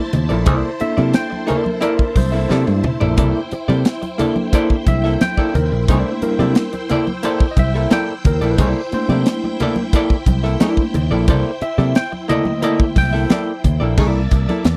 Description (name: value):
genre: funk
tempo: 89 BPM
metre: 4/4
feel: straight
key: C mixolydian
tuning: A4 = 439 Hz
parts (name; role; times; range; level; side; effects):
- string machine, violins; sustained chords; 0.0-14.8 s; Bb3 to A5; -30 LUFS; equal; ensemble chorus
- tine electric piano; stabs; 0.0-13.6 s; D3 to G5; -24 LUFS; equal; overdrive
- archtop guitar, miked and amplified; accompaniment; 0.1-14.7 s; Bb3 to E5; -23 LUFS; equal; tube saturation
- picked electric bass; bass; 0.1-14.8 s; Bb1 to C3; -20 LUFS; equal; none
- crisp fusion drum kit; drums; 0.1-14.8 s; crash cymbal, hi-hat, kick drum, snare drum, toms; -19 LUFS; equal; none
- congas; percussion; 0.1-14.8 s; none; -27 LUFS; equal; none
room: little or no reverb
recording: dry, close 1970s-style studio recording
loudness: -17 LUFS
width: mono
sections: 0.0-14.0 A section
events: tine electric piano solo 0.0-14.0; drum fill 2.5-3.2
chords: 0.0 C13